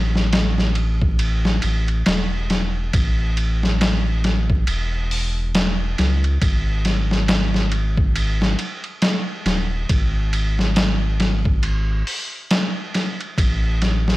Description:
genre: trip hop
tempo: 69 BPM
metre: 4/4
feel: swing 58% on 16ths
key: unclear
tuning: A4 = 440 Hz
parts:
  - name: round analog bass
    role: bass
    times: 0.0-14.2 s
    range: D#1 to C#2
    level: -20 LUFS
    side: equal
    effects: tube saturation
  - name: trip hop sampler-style drum kit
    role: drums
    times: 0.2-14.2 s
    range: hi-hat, kick drum, ride cymbal, snare drum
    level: -20 LUFS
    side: equal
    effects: none
room: little or no reverb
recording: dry, gritty hardware recording, vinyl crackle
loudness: -18 LUFS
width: side -18 dB against mid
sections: 0.0-14.2 A section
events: none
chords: none

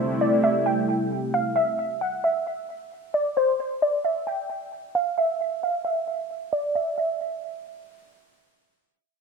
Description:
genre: hip hop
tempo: 133 BPM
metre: 4/4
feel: half-time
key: C major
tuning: A4 = 440 Hz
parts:
  - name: glassy wavetable pluck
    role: melody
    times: 0.0-8.3 s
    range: C5 to G5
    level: -24 LUFS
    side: equal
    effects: chorus, low-pass filter, analog delay
  - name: warm analog pad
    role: sustained chords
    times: 0.0-1.5 s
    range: C3 to G4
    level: -25 LUFS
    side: right 2 dB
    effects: chorus, low-pass filter
room: moderate spring reverb, RT60 1.3 s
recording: echo-heavy mix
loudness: -23 LUFS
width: side -5 dB against mid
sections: 0.0-7.0 A section; 7.0-9.2 B section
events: filter sweep 0.0-7.0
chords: 0.0 C6; 1.6 N.C.

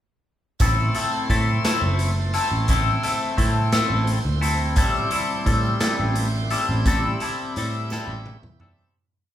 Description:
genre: psychedelic rock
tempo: 58 BPM (dotted quarters)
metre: 6/8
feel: straight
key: A minor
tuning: A4 = 440 Hz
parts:
  - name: tonewheel organ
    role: sustained chords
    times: 0.6-8.9 s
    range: C5 to C6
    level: -34 LUFS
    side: right 3 dB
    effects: slow rotary speaker
  - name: twangy electric guitar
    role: riff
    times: 0.6-9.0 s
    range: G3 to A4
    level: -24 LUFS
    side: left 3 dB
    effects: phaser
  - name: picked electric bass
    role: bass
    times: 0.6-8.8 s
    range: F#1 to A2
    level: -24 LUFS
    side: right 1 dB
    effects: none
  - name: raw garage drum kit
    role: drums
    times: 0.6-8.8 s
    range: hi-hat, kick drum, snare drum, toms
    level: -25 LUFS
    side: equal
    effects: none
  - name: tambourine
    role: percussion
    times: 0.6-8.9 s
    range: none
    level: -41 LUFS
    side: right 10 dB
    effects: none
room: moderate large studio reverb, RT60 0.8 s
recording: band playing live in one room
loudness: -19 LUFS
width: side -11 dB against mid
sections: 0.6-8.9 groove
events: fade-out 6.9-8.9; drum fill 7.9-8.9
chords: 0.6 Am; 4.8 Cadd9/A

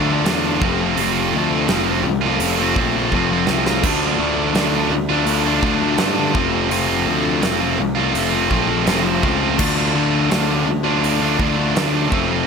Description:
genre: quiet-loud alternative rock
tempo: 84 BPM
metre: 4/4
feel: straight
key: D minor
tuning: A4 = 442 Hz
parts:
  - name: high-gain distorted guitar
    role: riff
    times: 0.0-12.5 s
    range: D3 to F4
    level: -20 LUFS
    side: right 12 dB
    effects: distortion
  - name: thick fuzz guitar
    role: riff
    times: 0.0-12.5 s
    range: D3 to F4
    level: -21 LUFS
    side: left 12 dB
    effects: distortion
  - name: fuzz picked electric bass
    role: bass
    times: 0.0-12.5 s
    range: F1 to G2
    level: -23 LUFS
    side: right 1 dB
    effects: overdrive
  - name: huge arena drum kit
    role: drums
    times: 0.3-12.3 s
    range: crash cymbal, hi-hat, kick drum, snare drum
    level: -24 LUFS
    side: right 2 dB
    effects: none
room: light reverb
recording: none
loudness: -16 LUFS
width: side -5 dB against mid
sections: 0.0-12.5 A section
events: drum fill 3.1-3.8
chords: 0.0 Dmadd9; 0.6 F; 3.8 Dm; 6.4 F; 9.6 Dm

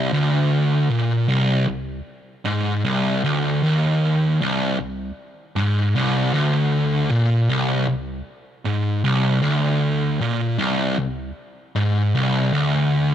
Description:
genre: metal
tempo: 77 BPM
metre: 4/4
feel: straight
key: C minor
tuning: A4 = 437 Hz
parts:
  - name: fuzz guitar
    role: solo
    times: 0.0-13.1 s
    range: C2 to Bb2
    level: -18 LUFS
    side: equal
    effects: distortion
room: digital ambience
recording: none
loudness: -18 LUFS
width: side -10 dB against mid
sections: 0.0-13.1 A section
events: none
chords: none

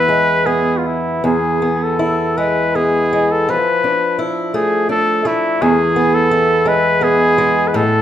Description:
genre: celtic folk, Celtic slow air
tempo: 83 BPM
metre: 3/4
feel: uneven beats, rubato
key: unclear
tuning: A4 = 439 Hz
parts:
  - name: warm trumpet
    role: melody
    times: 0.0-8.0 s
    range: E4 to B4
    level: -15 LUFS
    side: equal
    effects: none
  - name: fingerpicked swing-style acoustic guitar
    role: accompaniment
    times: 0.0-8.0 s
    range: E2 to E4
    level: -17 LUFS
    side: equal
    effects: none
room: moderate recital hall reverb, RT60 1.5 s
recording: minimal, uncompressed stereo recording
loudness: -13 LUFS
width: side -10 dB against mid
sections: 0.0-8.0 A section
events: none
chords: 0.0 E; 3.5 Dmadd9/F; 5.6 E

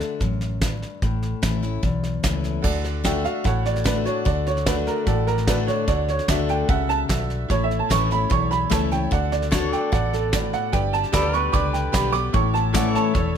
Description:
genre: honky-tonk and classic country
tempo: 148 BPM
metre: 4/4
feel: straight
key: D major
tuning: A4 = 440 Hz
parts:
  - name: picked steel-string acoustic guitar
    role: accompaniment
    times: 0.0-13.4 s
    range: E2 to G4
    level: -26 LUFS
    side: left 7 dB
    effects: none
  - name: soft brush drum kit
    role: drums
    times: 0.0-13.4 s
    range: crash cymbal, hi-hat, kick drum, snare drum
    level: -25 LUFS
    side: equal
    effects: none
  - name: vintage muted fingered electric bass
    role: bass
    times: 0.2-13.4 s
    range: E1 to D2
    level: -26 LUFS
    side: equal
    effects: none
  - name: tack piano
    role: accompaniment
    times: 2.6-13.4 s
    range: E4 to E5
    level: -30 LUFS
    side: right 4 dB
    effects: none
  - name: clear upright piano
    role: second line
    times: 3.0-13.4 s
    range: A4 to D6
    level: -25 LUFS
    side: right 7 dB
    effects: none
  - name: pedal steel guitar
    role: sustained chords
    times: 9.5-13.4 s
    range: A4 to D5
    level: -29 LUFS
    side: left 4 dB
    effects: none
room: light reverb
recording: close, detailed microphones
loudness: -20 LUFS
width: side -8 dB against mid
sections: 0.0-2.6 A section; 2.6-13.4 B section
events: upright piano solo 2.6-13.4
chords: 0.0 D; 1.0 A; 2.6 D; 7.5 A; 9.1 D; 10.7 G; 12.3 A

